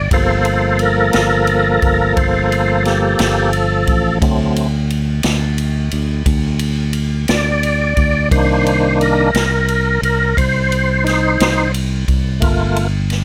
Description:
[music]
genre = slow blues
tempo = 58 BPM (dotted quarters)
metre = 12/8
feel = straight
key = G minor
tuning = A4 = 440 Hz
[part]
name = tonewheel organ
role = sustained chords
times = 0.0-12.9 s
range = Eb3 to D5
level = -18 LUFS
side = equal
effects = slow rotary speaker, overdrive, chorus vibrato
[part]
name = fingered electric bass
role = bass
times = 0.0-13.2 s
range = G1 to D2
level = -20 LUFS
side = equal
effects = none
[part]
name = swinging big-band drum kit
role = drums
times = 0.1-13.2 s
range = kick drum, ride cymbal, snare drum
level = -23 LUFS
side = equal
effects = none
[sound]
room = little or no reverb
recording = none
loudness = -15 LUFS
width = mono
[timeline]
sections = 0.0-13.2 A section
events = tonewheel organ solo 0.0-13.2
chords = 0.0 Gm7; 4.2 D7; 8.3 Cm7; 12.4 Gm7

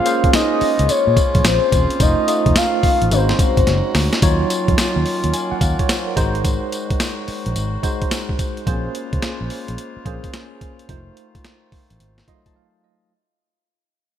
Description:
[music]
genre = R&B, new jack swing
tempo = 108 BPM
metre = 4/4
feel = swing 65% on 16ths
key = Bb minor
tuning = A4 = 440 Hz
[part]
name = soft octave-layered synth lead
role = melody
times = 0.0-4.0 s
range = C5 to F5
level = -18 LUFS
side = left 2 dB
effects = chorus, phaser
[part]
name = tine electric piano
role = accompaniment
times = 0.0-13.1 s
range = Gb3 to C6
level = -24 LUFS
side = right 1 dB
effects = medium stereo tremolo
[part]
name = warm woodwind section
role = sustained chords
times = 0.0-13.1 s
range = Db3 to C5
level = -28 LUFS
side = equal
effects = none
[part]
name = boom bap sampler-style drum kit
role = drums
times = 0.1-12.6 s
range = hi-hat, kick drum, snare drum, tambourine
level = -20 LUFS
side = equal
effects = none
[part]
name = vintage muted fingered electric bass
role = bass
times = 0.2-12.2 s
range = E1 to Bb2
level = -20 LUFS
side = equal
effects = none
[sound]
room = light reverb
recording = bright 1980s-style digital production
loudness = -15 LUFS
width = side -10 dB against mid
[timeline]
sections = 0.0-4.2 A section; 4.2-13.1 B section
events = drum fill 3.7-4.2; fade-out 4.2-13.1; tine electric piano fill 12.0-13.1; break 12.6-13.1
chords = 0.0 Bbm9; 2.0 F7; 3.1 Ab7; 4.2 Ebm9; 6.2 Ab7; 8.7 Bbm9; 10.9 F7

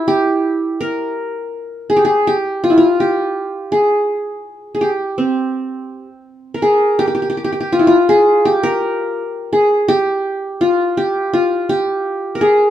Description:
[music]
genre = arabic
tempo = 83 BPM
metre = 4/4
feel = straight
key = unclear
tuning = A4 = 440 Hz
[part]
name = qanun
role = solo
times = 0.0-12.7 s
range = C4 to Bb4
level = -14 LUFS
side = equal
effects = none
[sound]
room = moderate studio reverb, RT60 0.5 s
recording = band playing live in one room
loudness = -14 LUFS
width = side -11 dB against mid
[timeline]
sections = 0.0-6.6 A section; 6.6-12.7 B section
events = none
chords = none

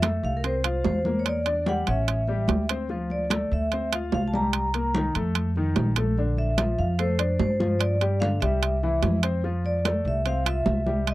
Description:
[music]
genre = Afro-Cuban jazz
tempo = 147 BPM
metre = 4/4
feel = straight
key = F major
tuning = A4 = 440 Hz
[part]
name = vibraphone with medium hard mallets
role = melody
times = 0.0-11.1 s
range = Bb4 to Bb5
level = -28 LUFS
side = equal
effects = none
[part]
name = warm concert grand piano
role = accompaniment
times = 0.0-11.1 s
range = D3 to F5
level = -30 LUFS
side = left 4 dB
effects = none
[part]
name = upright bass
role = bass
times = 0.0-11.1 s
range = A1 to G2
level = -26 LUFS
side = equal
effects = none
[part]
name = congas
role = percussion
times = 0.0-11.1 s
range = none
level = -30 LUFS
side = left 1 dB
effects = none
[part]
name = timbales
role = percussion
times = 0.0-11.1 s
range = none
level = -28 LUFS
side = right 9 dB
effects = none
[sound]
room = little or no reverb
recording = dry, close 1970s-style studio recording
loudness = -22 LUFS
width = side -17 dB against mid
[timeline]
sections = 0.0-11.1 A section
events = none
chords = 0.0 Fmaj7; 1.3 Em7b5; 2.1 A7; 2.9 Dm7; 4.5 Cm7; 5.4 F7; 6.2 Bbmaj7; 7.8 G5; 8.6 C; 9.4 Fmaj7

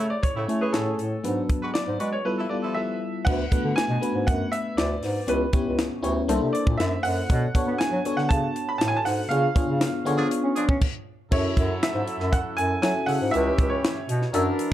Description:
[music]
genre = polished 1980s jazz-funk pop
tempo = 119 BPM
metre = 4/4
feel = straight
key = F# minor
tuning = A4 = 439 Hz
[part]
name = clear grand piano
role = melody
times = 0.0-14.4 s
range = A4 to B5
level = -29 LUFS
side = right 2 dB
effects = none
[part]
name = warm horn section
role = second line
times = 0.0-3.0, 10.2-14.7 s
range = C#3 to C#5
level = -32 LUFS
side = right 1 dB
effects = none
[part]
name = FM electric piano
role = accompaniment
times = 0.0-14.7 s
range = F#3 to A5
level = -28 LUFS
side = left 2 dB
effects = lush chorus
[part]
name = mellow bass clarinet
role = bass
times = 0.0-14.5 s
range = C2 to C#4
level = -26 LUFS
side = equal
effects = none
[part]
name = crisp fusion drum kit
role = drums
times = 0.2-14.7 s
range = crash cymbal, hi-hat, kick drum, snare drum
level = -26 LUFS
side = equal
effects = none
[sound]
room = light reverb, small room ambience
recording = dark, warm production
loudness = -22 LUFS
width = side -12 dB against mid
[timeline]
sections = 0.0-3.3 A section; 3.3-11.3 B section; 11.3-14.7 C section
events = band accent 9.3-11.3; stop 10.8-11.3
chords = 0.0 Amaj7; 1.2 G#m7b5; 2.3 G13; 3.3 D6; 5.3 C#m7b5; 6.3 C13; 7.3 Bm9; 9.3 C#7b9; 11.3 F#m7; 13.3 C#m7b5

